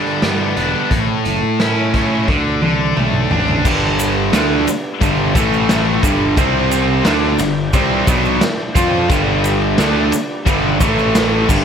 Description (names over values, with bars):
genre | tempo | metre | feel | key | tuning
classic rock | 88 BPM | 4/4 | straight | G major | A4 = 441 Hz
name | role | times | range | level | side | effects
crunchy overdriven guitar | riff | 0.0-11.6 s | G2 to F4 | -19 LUFS | right 11 dB | none
tight distorted guitar | riff | 0.0-11.6 s | G2 to F4 | -20 LUFS | left 12 dB | distortion
raw garage drum kit | drums | 0.1-11.6 s | crash cymbal, hi-hat, kick drum, ride cymbal, snare drum, toms | -19 LUFS | equal | none
fuzz fingered electric bass | bass | 0.2-11.6 s | E1 to A2 | -21 LUFS | equal | overdrive
raw garage guitar | riff | 3.6-11.6 s | G2 to F4 | -20 LUFS | equal | overdrive
mellow tonewheel organ | sustained chords | 3.7-11.5 s | A3 to G5 | -29 LUFS | equal | none
egg shaker | percussion | 3.7-11.6 s | none | -31 LUFS | right 5 dB | none
room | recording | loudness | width
light reverb, small room ambience | none | -13 LUFS | side -7 dB against mid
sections
0.0-3.6 A section; 3.6-11.6 B section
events
drum fill 2.3-3.6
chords
0.0 G; 0.9 A; 2.3 D5; 3.6 G; 5.4 A5; 6.0 G5; 6.4 C5; 7.1 G; 10.8 A5